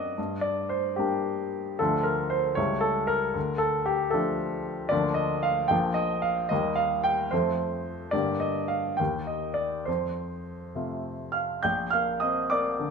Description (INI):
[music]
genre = classical, romantic character piece for solo piano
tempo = 66-78 BPM (dotted quarters)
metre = 6/8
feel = rubato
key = Bb major from 4.9 s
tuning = A4 = 440 Hz
[part]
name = clear baby grand piano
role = solo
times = 0.0-12.9 s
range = Bb1 to G6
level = -25 LUFS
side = equal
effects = none
[sound]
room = moderate stone room reverb, RT60 1.0 s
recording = minimal, uncompressed stereo recording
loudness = -25 LUFS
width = side -5 dB against mid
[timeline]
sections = 0.0-11.6 A section; 11.6-12.9 B section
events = none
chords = 0.2 Gm; 1.8 Dm; 2.6 A7/C#; 3.4 Dm; 4.9 Bb/D; 5.7 Bb; 6.5 Eb; 7.3 F; 8.1 Gm; 9.0 Eb; 9.9 F; 11.6 Bb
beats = | 0.18 0.98 | 1.79 2.57 | 3.35 4.13 | 4.92 5.71 | 6.51 7.32 | 8.13 8.99 | 9.87 10.75 | 11.63 12.49